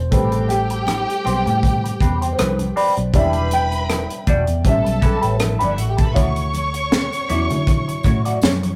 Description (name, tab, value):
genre	lush 1970s-style soul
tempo	80 BPM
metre	4/4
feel	swing 54% on 16ths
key	unclear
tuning	A4 = 440 Hz
part	dark grand piano	accompaniment	0.0-8.8 s	E3 to G5	-26 LUFS	equal	none
part	vintage muted fingered electric bass	bass	0.0-8.8 s	E1 to D3	-24 LUFS	equal	none
part	warm studio string section	second line	0.1-8.8 s	D4 to C#6	-28 LUFS	equal	none
part	semi-hollow electric guitar	riff	0.1-8.7 s	G3 to D5	-26 LUFS	equal	wah
part	tight funk drum kit	drums	0.1-8.8 s	hi-hat, kick drum, rim click, snare drum	-22 LUFS	equal	none
part	congas	percussion	0.1-8.8 s	none	-33 LUFS	equal	none
part	tambourine	percussion	6.2-8.6 s	none	-44 LUFS	equal	none
room	moderate studio ambience, RT60 0.5 s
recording	rough rehearsal-room recording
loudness	-19 LUFS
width	mono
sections	0.0-8.8 A section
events	grand piano solo 0.0-8.8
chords	0.1 Am9; 3.1 Em9; 4.7 A9; 6.2 Dmaj9